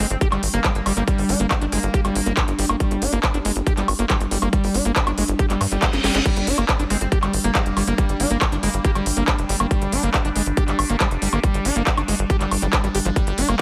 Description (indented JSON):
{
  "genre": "psychedelic trance",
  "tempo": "139 BPM",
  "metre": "4/4",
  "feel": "straight",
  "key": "G phrygian",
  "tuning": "A4 = 440 Hz",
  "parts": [
    { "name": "metallic wobble bass", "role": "second line", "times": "0.0-2.3, 6.9-9.0 s", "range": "G3 to C4", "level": "-35 LUFS", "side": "equal", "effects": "subtle chorus, sidechain pumping, high-pass filter, digital delay" },
    { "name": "evolving wavetable pad", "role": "sustained chords", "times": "0.2-13.6 s", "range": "G3 to D4", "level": "-30 LUFS", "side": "equal", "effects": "phaser, built-in reverb, vintage 12-bit sampler grit, sidechain pumping" },
    { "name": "screaming distorted acid line", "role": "riff", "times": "0.0-13.6 s", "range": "F3 to G4", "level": "-28 LUFS", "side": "equal", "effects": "distortion, chorus, sidechain pumping, digital delay" },
    { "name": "tight sequencer bass", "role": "bass", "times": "0.0-13.5 s", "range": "F1 to G2", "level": "-26 LUFS", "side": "equal", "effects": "none" },
    { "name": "techno drum kit", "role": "drums", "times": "0.0-13.6 s", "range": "crash cymbal, handclaps, hi-hat, snare drum, woodblock", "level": "-26 LUFS", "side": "equal", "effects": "overdrive" },
    { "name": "electronic kick drum", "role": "drums", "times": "0.2-13.6 s", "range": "none", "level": "-23 LUFS", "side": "equal", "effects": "none" },
    { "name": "reverse cymbal", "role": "sound effects", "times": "5.6-6.3 s", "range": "none", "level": "-30 LUFS", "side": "equal", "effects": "none" }
  ],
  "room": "digital ambience",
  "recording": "none",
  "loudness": "-20 LUFS",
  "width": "mono",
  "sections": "0.0-6.3 A section; 6.3-13.6 B section",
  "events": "reverse cymbal 5.6-6.3; drum fill 5.9-6.3; band accent 6.1; drop 6.3-13.6",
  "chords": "0.0 G5"
}